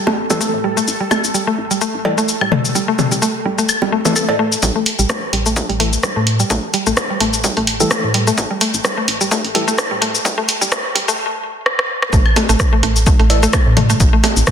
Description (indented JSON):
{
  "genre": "minimal techno",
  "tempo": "128 BPM",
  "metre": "4/4",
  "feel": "swing 55% on 16ths",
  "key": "unclear",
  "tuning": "A4 = 440 Hz",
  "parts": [
    { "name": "bubbling stepped-filter texture", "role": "texture", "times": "0.0-4.6, 12.1-14.5 s", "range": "A4", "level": "-29 LUFS", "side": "right 1 dB", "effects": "chorus, built-in reverb, sidechain pumping" },
    { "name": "mallet-like synth pluck", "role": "riff", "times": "0.1-14.5 s", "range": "E3 to A4", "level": "-19 LUFS", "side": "equal", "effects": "chorus, sidechain pumping, digital delay" },
    { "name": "woody FM bass", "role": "bass", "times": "0.1-14.4 s", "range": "A1 to A2", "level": "-20 LUFS", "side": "equal", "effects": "tube saturation, sidechain pumping, high-pass filter" },
    { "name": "electronic bongos, woodblock, cowbell and toms", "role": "percussion", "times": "0.1-4.4, 12.3-14.3 s", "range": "none", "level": "-19 LUFS", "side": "left 2 dB", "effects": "overdrive, digital delay" },
    { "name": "percussive organ stab", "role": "stabs", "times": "0.3-9.7, 13.3-13.4 s", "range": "E3 to A4", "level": "-23 LUFS", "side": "left 2 dB", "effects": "chorus, digital delay" },
    { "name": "punchy analog drum machine", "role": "drums", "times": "0.3-14.5 s", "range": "cabasa, hi-hat, rim click", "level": "-18 LUFS", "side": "left 1 dB", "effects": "soft clipping on snare" },
    { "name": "electronic kick drum", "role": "drums", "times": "4.6-14.5 s", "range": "none", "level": "-17 LUFS", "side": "equal", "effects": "high-pass filter on kick, high-pass filter on room" }
  ],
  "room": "moderate lush hall reverb, RT60 2.1 s",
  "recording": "dense, heavily limited modern master, high-pass filter",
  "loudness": "-13 LUFS",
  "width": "side -8 dB against mid",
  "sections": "0.0-4.6 A section; 4.6-12.1 B section; 12.1-14.5 C section",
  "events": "filter sweep on synth stab 0.0-4.6, 4.6-12.1; build-up 4.6-12.1; filter sweep on synth arpeggio sound 4.6-12.1; break 11.2-12.1; drum fill 11.7-12.1; drop 12.1-14.5",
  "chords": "0.0 A5",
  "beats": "0.41 | 0.88 1.35 1.81 2.28 | 2.75 3.22 3.69 4.16 | 4.63 5.10 5.57 6.03 | 6.50 6.97 7.44 7.91 | 8.38 8.85 9.31 9.78 | 10.25 10.72 11.19 11.66 | 12.13 12.60 13.06 13.53 | 14.00 14.47"
}